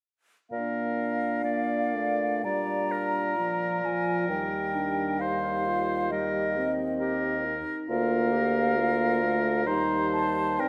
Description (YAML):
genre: classical, slow romantic movement for wind quintet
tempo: 59-69 BPM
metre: 4/4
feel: rubato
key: Bb major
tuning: A4 = 441 Hz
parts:
  - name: mellow hollow silver concert flute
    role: melody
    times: 0.5-10.7 s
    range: Eb5 to Bb5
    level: -33 LUFS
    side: equal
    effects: none
  - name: clear oboe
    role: second line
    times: 0.5-10.7 s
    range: Bb4 to D5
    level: -33 LUFS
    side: equal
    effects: none
  - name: dark French horn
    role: accompaniment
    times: 0.5-10.7 s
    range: F3 to C4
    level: -35 LUFS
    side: equal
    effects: none
  - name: mellow clarinet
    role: accompaniment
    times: 0.5-10.7 s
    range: D4 to G4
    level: -36 LUFS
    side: equal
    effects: none
  - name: mellow bassoon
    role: bass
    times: 0.5-10.7 s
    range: D2 to Bb2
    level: -34 LUFS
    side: equal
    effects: none
room: moderate recital hall reverb, RT60 1.7 s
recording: none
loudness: -27 LUFS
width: mono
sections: 0.5-10.7 A section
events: none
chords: 0.5 Bb; 4.3 Eb; 7.9 Bb/D; 9.7 Eb